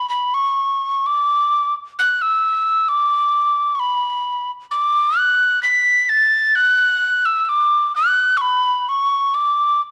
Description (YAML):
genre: celtic folk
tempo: 65 BPM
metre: 4/4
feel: rubato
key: unclear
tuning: A4 = 440 Hz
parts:
  - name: breathy mellow wooden whistle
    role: solo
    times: 0.0-9.8 s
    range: B5 to B6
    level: -17 LUFS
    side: equal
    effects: none
room: light reverb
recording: dark, warm production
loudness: -17 LUFS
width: mono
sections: 0.0-9.9 A section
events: none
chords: none